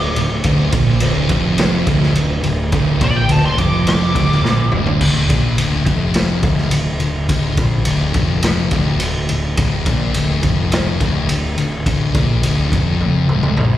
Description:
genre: stoner and doom metal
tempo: 105 BPM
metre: 4/4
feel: straight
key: D minor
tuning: A4 = 440 Hz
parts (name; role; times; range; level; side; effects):
- fuzz lead guitar; melody; 0.0-5.0 s; D5 to D6; -22 LUFS; left 1 dB; wah, distortion, slapback echo, tape echo
- thick fuzz guitar; riff; 0.0-13.8 s; D2 to Bb2; -19 LUFS; left 5 dB; distortion
- thick fuzz guitar; riff; 0.0-5.0 s; D2 to Bb2; -19 LUFS; right 7 dB; distortion
- fuzz picked electric bass; bass; 0.0-13.8 s; D1 to Bb1; -20 LUFS; equal; overdrive
- raw garage drum kit; drums; 0.2-13.7 s; crash cymbal, kick drum, ride cymbal, snare drum, toms; -18 LUFS; equal; none
room: studio reverb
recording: live gig heard through the venue's PA, recital hall reverb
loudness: -14 LUFS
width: side -13 dB against mid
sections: 0.0-5.0 A section; 5.0-13.8 B section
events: lead electric guitar solo 0.0-5.0; drum fill 4.4-5.0, 13.0-13.8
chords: 0.0 Dm

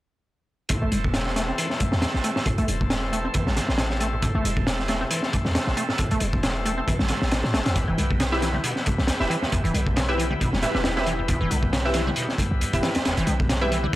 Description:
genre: breakbeat, breaks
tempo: 136 BPM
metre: 4/4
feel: swing 55% on 16ths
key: A minor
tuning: A4 = 441 Hz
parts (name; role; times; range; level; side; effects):
- bright tonewheel organ; sustained chords; 0.7-14.0 s; E3 to C4; -31 LUFS; equal; overdrive, slow rotary speaker, sidechain pumping
- deep acid bass; riff; 0.7-14.0 s; E2 to C4; -30 LUFS; equal; analog chorus, vintage 12-bit sampler grit, analog delay
- warm 808-style bass; bass; 0.7-13.9 s; E1 to A2; -27 LUFS; equal; none
- crunchy breakbeat drum kit; drums; 0.7-14.0 s; hi-hat, kick drum, snare drum; -24 LUFS; equal; none
- congas; percussion; 0.9-13.9 s; none; -34 LUFS; left 2 dB; none
- orchestra-hit-like synth stab; stabs; 8.3-13.7 s; E4 to E5; -28 LUFS; equal; built-in reverb, cassette tape, analog delay
room: light reverb, small room ambience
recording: dry, gritty hardware recording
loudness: -21 LUFS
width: side -16 dB against mid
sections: 0.7-14.0 A section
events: none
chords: 0.7 Am; 7.8 Em

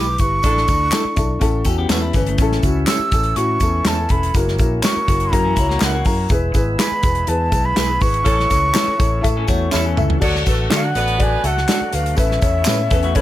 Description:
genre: uptempo 1960s-style soul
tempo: 123 BPM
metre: 4/4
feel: straight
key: unclear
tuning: A4 = 441 Hz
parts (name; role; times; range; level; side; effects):
- breathy mellow jazz flute; melody; 0.0-13.2 s; C#5 to E6; -20 LUFS; right 1 dB; none
- dark upright piano; accompaniment; 0.0-13.2 s; C#4 to A5; -23 LUFS; left 3 dB; none
- electric guitar through a small old amp; stabs; 0.0-12.8 s; C#4 to B4; -25 LUFS; right 6 dB; none
- fingered electric bass; bass; 0.0-13.2 s; E1 to D3; -21 LUFS; equal; none
- natural country drum kit; drums; 0.2-13.2 s; crash cymbal, hi-hat, kick drum, snare drum, toms; -20 LUFS; equal; none
- tambourine and handclaps; percussion; 0.2-13.0 s; none; -28 LUFS; equal; none
- bright saxophone section; second line; 0.4-0.8, 8.2-11.6 s; E3 to B4; -25 LUFS; right 2 dB; none
- semi-hollow electric guitar; riff; 1.7-6.3, 9.4-13.2 s; C#3 to A4; -26 LUFS; left 7 dB; none
- bright tonewheel organ; sustained chords; 2.4-13.2 s; E3 to F#4; -30 LUFS; right 1 dB; slow rotary speaker
room: little or no reverb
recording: none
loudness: -15 LUFS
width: side -14 dB against mid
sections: 0.0-10.2 A section; 10.2-13.2 B section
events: band accent 0.4-2.4, 8.3-10.2; upright piano fill 0.9-2.4, 9.5-10.2; drum fill 9.7-10.2; flute solo 10.2-13.2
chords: 0.4 Asus4; 1.4 A; 4.3 F#7; 6.3 E; 8.3 A; 10.2 D; 12.2 Aadd9

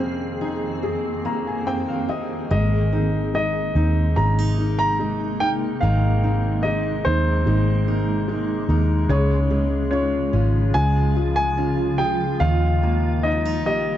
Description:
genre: pop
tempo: 72 BPM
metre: 4/4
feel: straight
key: unclear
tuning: A4 = 442 Hz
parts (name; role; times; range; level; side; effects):
- warm grand piano; melody; 0.0-14.0 s; C5 to Bb5; -25 LUFS; equal; none
- clear upright piano; accompaniment; 0.0-14.0 s; F2 to Bb5; -26 LUFS; left 3 dB; none
- granular cloud pad; sustained chords; 0.0-14.0 s; F2 to Ab4; -27 LUFS; right 1 dB; built-in reverb
- fingerpicked steel-string acoustic guitar; arpeggios; 0.0-14.0 s; F2 to Bb4; -31 LUFS; right 5 dB; none
- vintage muted fingered electric bass; bass; 2.5-14.0 s; Ab1 to Eb2; -21 LUFS; equal; none
room: studio reverb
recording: dark, warm production, nothing above 8.0 kHz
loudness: -19 LUFS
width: side -11 dB against mid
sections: 0.0-2.5 A section; 2.5-14.0 B section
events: upright piano fill 0.8-2.5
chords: 0.0 Abadd9/F; 2.5 Abadd9; 9.1 Db; 12.4 Ebadd9

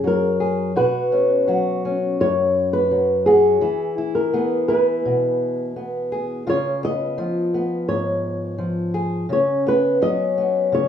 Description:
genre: folk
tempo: 84 BPM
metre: 4/4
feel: straight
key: B major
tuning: A4 = 440 Hz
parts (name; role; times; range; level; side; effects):
- flamenco guitar; melody; 0.0-10.9 s; G#4 to D#5; -19 LUFS; equal; none
- fingerpicked old ladder-braced acoustic guitar; accompaniment; 0.0-10.9 s; F#2 to G#4; -22 LUFS; left 3 dB; none
room: moderate large studio reverb, RT60 0.9 s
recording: small room ambience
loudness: -18 LUFS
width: side -9 dB against mid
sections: 0.8-10.9 A section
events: none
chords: 0.0 F#sus2; 0.8 Bsus2; 3.6 E; 6.5 C#7; 9.3 F#sus4/C#

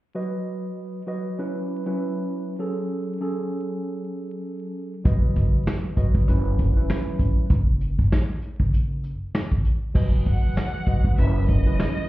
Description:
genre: hip hop, boom-bap hip-hop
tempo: 98 BPM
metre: 4/4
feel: swing 60% on 16ths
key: unclear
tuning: A4 = 440 Hz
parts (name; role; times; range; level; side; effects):
- mellow tine electric piano; accompaniment; 0.1-12.1 s; F#3 to D#5; -28 LUFS; right 1 dB; medium stereo tremolo, high-pass filter, low-pass filter
- upright bass; bass; 5.1-11.7 s; F#1; -22 LUFS; equal; none
- vintage brush drum kit; drums; 5.1-12.0 s; crash cymbal, hi-hat, kick drum, snare drum; -21 LUFS; equal; none
- warm studio violin section; melody; 10.3-12.1 s; D#5 to F#5; -33 LUFS; equal; high-pass filter, low-pass filter
room: little or no reverb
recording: heard muffled through a wall, club reverb, vinyl crackle, EQ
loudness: -21 LUFS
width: side -17 dB against mid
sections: 0.2-10.0 A section; 10.0-12.1 B section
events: none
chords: 0.2 B/F#; 1.4 C#m7/F#; 2.6 F#madd9; 5.1 B/F#; 6.3 C#m7/F#; 7.5 N.C.; 10.0 B/F#; 11.2 C#m7/F#

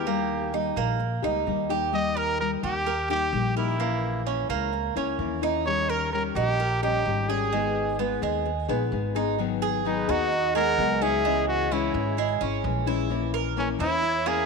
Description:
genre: latin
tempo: 129 BPM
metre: 4/4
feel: straight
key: G# harmonic minor, G# minor from 9.4 s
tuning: A4 = 440 Hz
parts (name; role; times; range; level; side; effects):
- clear trumpet; melody; 0.0-14.5 s; C#4 to D#5; -28 LUFS; equal; none
- nylon-string guitar; accompaniment; 0.0-14.5 s; C#3 to G#4; -29 LUFS; left 15 dB; none
- Cuban tres; arpeggios; 0.0-14.5 s; G#3 to A#4; -29 LUFS; right 12 dB; none
- upright bass; bass; 0.0-14.5 s; G#1 to E2; -31 LUFS; equal; none
- mellow concert flute; second line; 9.9-14.5 s; A#4 to F#5; -32 LUFS; left 1 dB; none
room: moderate plate reverb, RT60 3.1 s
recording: 1960s-style stereo with parts hard left and right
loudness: -23 LUFS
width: side -4 dB against mid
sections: 0.0-9.4 A section; 9.4-14.5 B section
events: none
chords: 0.1 D#; 3.8 A#dim; 5.7 D#7; 7.5 G#m; 9.4 G#m7; 11.2 C#m; 13.1 A#dim

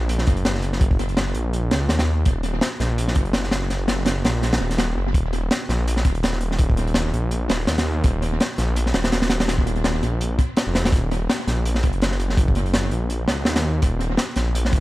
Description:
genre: drum and bass, jungle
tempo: 166 BPM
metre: 4/4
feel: swing 55% on 16ths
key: Eb minor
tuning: A4 = 440 Hz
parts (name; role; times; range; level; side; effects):
- detuned saw bass; bass; 0.0-14.8 s; Eb1 to Eb2; -22 LUFS; equal; none
- crunchy breakbeat drum kit; drums; 0.1-14.8 s; hi-hat, kick drum, snare drum; -21 LUFS; equal; tape echo
room: little or no reverb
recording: echo-heavy mix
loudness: -19 LUFS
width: side -18 dB against mid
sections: 0.0-14.8 A section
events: none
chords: none

